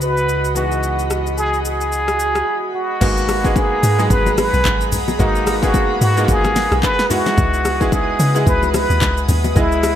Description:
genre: amapiano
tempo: 110 BPM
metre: 4/4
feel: swing 58% on 16ths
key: G# minor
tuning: A4 = 441 Hz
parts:
  - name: trumpet with plunger mute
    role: melody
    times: 0.0-10.0 s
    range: D#4 to B4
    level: -19 LUFS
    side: equal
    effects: digital delay
  - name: bright grand piano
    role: accompaniment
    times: 0.0-10.0 s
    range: E3 to D#5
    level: -22 LUFS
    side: right 1 dB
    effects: none
  - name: airy breathy pad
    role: sustained chords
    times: 0.0-10.0 s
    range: F#4 to D#6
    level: -26 LUFS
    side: right 2 dB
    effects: chorus
  - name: plucky analog bass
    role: bass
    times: 0.0-2.4 s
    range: C#2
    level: -23 LUFS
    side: equal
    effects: none
  - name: deep house drum kit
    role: drums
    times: 0.0-10.0 s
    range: crash cymbal, handclaps, hi-hat, kick drum, rim click, shaker, snare drum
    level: -21 LUFS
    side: left 1 dB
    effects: overdrive
  - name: deep log drum bass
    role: bass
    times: 3.0-10.0 s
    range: G#1 to C#3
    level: -19 LUFS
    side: equal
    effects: none
  - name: congas and bongos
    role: percussion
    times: 3.0-10.0 s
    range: none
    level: -24 LUFS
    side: left 2 dB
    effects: none
room: light reverb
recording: bright 1980s-style digital production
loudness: -14 LUFS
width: side -10 dB against mid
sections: 0.0-3.0 A section; 3.0-10.0 B section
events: break 2.5-3.0; drop 3.0-10.0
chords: 0.0 C#m11; 3.0 G#m9; 7.1 C#m11

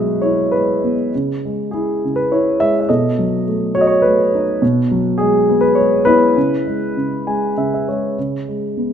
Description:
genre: classical, lyrical solo piano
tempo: 102 BPM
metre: 3/4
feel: rubato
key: C# minor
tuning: A4 = 439 Hz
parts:
  - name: dark concert grand piano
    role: solo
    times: 0.0-8.9 s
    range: B2 to G#5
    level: -14 LUFS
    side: equal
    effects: none
room: moderate scoring stage reverb, RT60 2.0 s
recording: minimal, uncompressed stereo recording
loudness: -14 LUFS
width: side -8 dB against mid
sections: 0.0-8.2 A section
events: grand piano fill 7.0-8.2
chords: 0.0 Eadd9/B; 1.1 C#m; 2.9 B7; 4.6 Eadd9/B; 6.4 C#m7; 8.2 C#7(no3)

